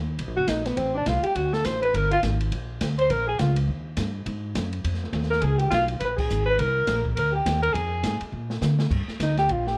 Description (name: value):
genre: jazz, small-group swing and bop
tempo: 206 BPM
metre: 4/4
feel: swing 59% on 8ths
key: Eb major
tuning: A4 = 440 Hz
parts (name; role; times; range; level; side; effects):
- upright bass; bass; 0.0-9.8 s; F#1 to D3; -28 LUFS; equal; none
- open jazz drum kit; drums; 0.2-9.7 s; crash cymbal, hi-hat, kick drum, ride cymbal, snare drum; -34 LUFS; equal; none
- breathy alto saxophone; melody; 0.4-9.8 s; B3 to C5; -27 LUFS; equal; none
- breathy alto saxophone; second line; 0.4-8.2 s; B3 to C5; -32 LUFS; equal; none
room: light reverb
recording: worn, warbling old tape, cassette tape, warbly pitch drift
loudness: -25 LUFS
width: mono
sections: 0.0-8.9 A section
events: band accent 6.2; drum fill 8.3-8.9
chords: 0.0 Bmaj7; 0.8 F69/A; 1.4 D5; 1.9 Gm; 3.1 Bbm; 3.7 Eb; 4.3 Ab5; 5.4 Db5; 6.6 Cm7; 7.8 Fm; 8.3 Bb; 8.9 Ebmaj7 (rootless)